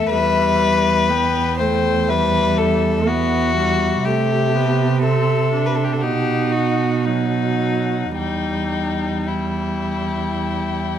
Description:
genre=classical, slow romantic movement for string quartet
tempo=48-62 BPM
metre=4/4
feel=rubato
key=E minor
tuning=A4 = 438 Hz
part: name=muted violin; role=melody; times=0.0-11.0 s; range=E5 to G5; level=-25 LUFS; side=left 12 dB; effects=none
part: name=muted violin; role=second line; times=0.0-11.0 s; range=D#4 to C5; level=-21 LUFS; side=left 4 dB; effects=none
part: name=muted viola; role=accompaniment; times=0.0-11.0 s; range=F#3 to D#4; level=-23 LUFS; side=right 1 dB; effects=none
part: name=muted cello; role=bass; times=0.0-11.0 s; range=E2 to C3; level=-22 LUFS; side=right 5 dB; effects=none
room=moderate recital hall reverb, RT60 1.5 s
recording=none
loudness=-16 LUFS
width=side -9 dB against mid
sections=0.0-11.0 A section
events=none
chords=0.1 Em; 4.0 Cmaj13; 6.0 B; 8.2 Em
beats=| 0.11 1.09 2.09 3.07 | 4.05 5.03 6.02 7.05 | 8.16 9.27 10.38

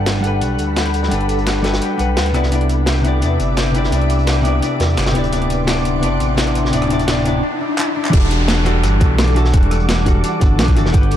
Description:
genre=liquid drum and bass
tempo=171 BPM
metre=4/4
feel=straight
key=E minor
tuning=A4 = 440 Hz
part: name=hollow-body jazz guitar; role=accompaniment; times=0.0-11.2 s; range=C3 to F#5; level=-20 LUFS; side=left 1 dB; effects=dub echo
part: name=ethereal airy pad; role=sustained chords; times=0.0-11.2 s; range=A4 to D6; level=-25 LUFS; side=left 1 dB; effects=ensemble chorus, built-in reverb, sidechain pumping
part: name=concert harp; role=arpeggios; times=0.0-11.2 s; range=D4 to F#5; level=-24 LUFS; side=left 6 dB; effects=low-pass filter, dub echo
part: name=smooth synth bass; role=bass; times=0.0-11.2 s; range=D1 to E2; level=-18 LUFS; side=equal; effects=none
part: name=breakbeat sampler-style drum kit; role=drums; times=0.1-11.2 s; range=crash cymbal, handclaps, hi-hat, rim click, snare drum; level=-24 LUFS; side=equal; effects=high-pass filter on hats, high-pass filter on snare, high-pass filter on cymbals, high-pass filter on room
part: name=crunchy breakbeat drum kit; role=drums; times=0.1-11.2 s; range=hi-hat, snare drum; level=-26 LUFS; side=equal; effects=high-pass filter on hats, high-pass filter on snare, high-pass filter on room
part: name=riser, swell and downlifter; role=sound effects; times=4.7-10.9 s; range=none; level=-27 LUFS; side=right 1 dB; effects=none
part: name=electronic kick drum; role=drums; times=8.1-11.0 s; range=none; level=-14 LUFS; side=equal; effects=none
room=light reverb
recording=dark, warm production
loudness=-14 LUFS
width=side -10 dB against mid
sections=0.0-8.1 A section; 8.1-11.2 B section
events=build-up 0.0-8.1; riser 4.7-8.1; break 7.4-8.1; swell 7.4-8.1; drum fill 7.8-8.1; drop 8.1-11.2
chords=0.0 Gmaj9; 2.3 Cmaj9; 5.2 D7; 8.1 Em11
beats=0.06 0.41 0.77 | 1.12 1.47 1.82 2.17 | 2.52 2.87 3.22 3.57 | 3.92 4.27 4.62 4.98 | 5.33 5.68 6.03 6.38 | 6.73 7.08 7.43 7.78 | 8.13 8.48 8.84 9.19 | 9.54 9.89 10.24 10.59 | 10.94

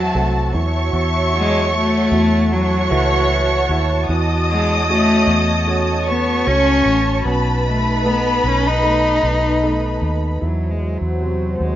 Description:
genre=pop ballad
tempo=76 BPM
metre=4/4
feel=straight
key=unclear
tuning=A4 = 438 Hz
part: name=warm cello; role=melody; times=0.0-11.8 s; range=E3 to D#4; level=-20 LUFS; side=left 2 dB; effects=none
part: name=warm studio violin section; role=second line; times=0.0-10.4 s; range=F#4 to D#6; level=-20 LUFS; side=equal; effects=none
part: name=warm grand piano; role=accompaniment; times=0.0-11.8 s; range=B2 to F#4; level=-26 LUFS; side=right 2 dB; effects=none
part: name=warm analog pad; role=sustained chords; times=0.0-11.8 s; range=F#3 to A5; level=-25 LUFS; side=right 2 dB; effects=chorus
part: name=vintage muted fingered electric bass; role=bass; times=0.0-11.8 s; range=A1 to E2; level=-20 LUFS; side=equal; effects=none
room=little or no reverb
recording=rough home demo mix, nothing above 7.5 kHz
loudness=-15 LUFS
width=side -12 dB against mid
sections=0.0-10.4 A section; 10.4-11.8 B section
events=none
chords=0.0 Am6; 0.5 F#m7/E; 4.1 A6/E; 7.3 B7; 10.4 G#7b13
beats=0.15 | 0.94 1.73 2.52 3.31 | 4.10 4.89 5.68 6.47 | 7.26 8.05 8.84 9.62 | 10.41 11.20

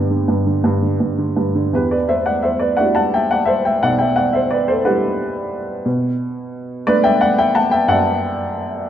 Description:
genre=classical, lyrical solo piano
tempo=58 BPM (dotted quarters)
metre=6/8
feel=rubato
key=unclear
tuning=A4 = 442 Hz
part: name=warm upright piano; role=solo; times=0.0-8.9 s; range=B1 to A5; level=-15 LUFS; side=equal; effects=none
room=moderate recital hall reverb, RT60 1.9 s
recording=dark, warm production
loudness=-15 LUFS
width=side -10 dB against mid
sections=0.0-1.7 A section; 1.7-8.9 B section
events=none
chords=0.0 G; 1.7 Em9; 5.9 Bm7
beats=0.65 | 1.73 2.79 | 3.83 4.85 | 5.85 6.87 | 7.88

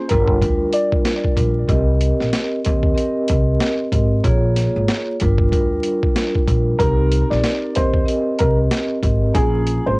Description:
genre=hip hop, boom-bap hip-hop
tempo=94 BPM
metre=4/4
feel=swing 61% on 16ths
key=C minor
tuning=A4 = 441 Hz
part: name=dark upright piano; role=melody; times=0.0-0.9, 6.8-10.0 s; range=Ab4 to D5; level=-22 LUFS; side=equal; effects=high-pass filter, low-pass filter, analog delay
part: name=vibraphone with soft mallets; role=accompaniment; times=0.0-10.0 s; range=G3 to Eb5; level=-20 LUFS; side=equal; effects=high-pass filter, low-pass filter, cassette tape
part: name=upright bass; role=bass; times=0.1-10.0 s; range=G1 to Eb2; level=-19 LUFS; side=equal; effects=tube saturation
part: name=boom bap sampler-style drum kit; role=drums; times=0.1-9.8 s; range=hi-hat, kick drum, snare drum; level=-20 LUFS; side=equal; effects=none
room=little or no reverb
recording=home recording on cassette, vinyl crackle, nothing above 10.6 kHz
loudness=-15 LUFS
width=side -27 dB against mid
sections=0.0-10.0 A section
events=none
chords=0.1 Gm7; 1.7 Cm7; 4.2 Bbm7; 5.2 Gm7; 6.8 Cm7; 9.3 Bbm7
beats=0.41 1.05 | 1.69 2.33 2.96 3.60 | 4.24 4.88 5.52 6.16 | 6.79 7.43 8.07 8.71 | 9.35 9.98

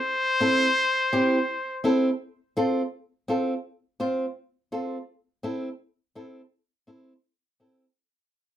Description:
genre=latin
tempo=167 BPM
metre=4/4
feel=straight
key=unclear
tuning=A4 = 440 Hz
part: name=trumpet with straight mute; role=melody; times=0.0-1.8 s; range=C5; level=-23 LUFS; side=left 1 dB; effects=none
part: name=flamenco guitar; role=accompaniment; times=0.4-7.9 s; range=C4 to C5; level=-24 LUFS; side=equal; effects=none
room=wet studio ambience, RT60 0.5 s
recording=none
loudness=-23 LUFS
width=side -11 dB against mid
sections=0.0-2.2 A section; 2.2-8.0 B section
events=fade-out 2.2-8.0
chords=0.0 Am; 2.2 F; 5.1 Am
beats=0.05 0.41 | 0.77 1.13 1.49 1.84 | 2.20 2.56 2.92 3.28 | 3.64 4.00 4.36 4.71 | 5.07 5.43 5.79 6.15 | 6.51 6.87 7.23 7.59

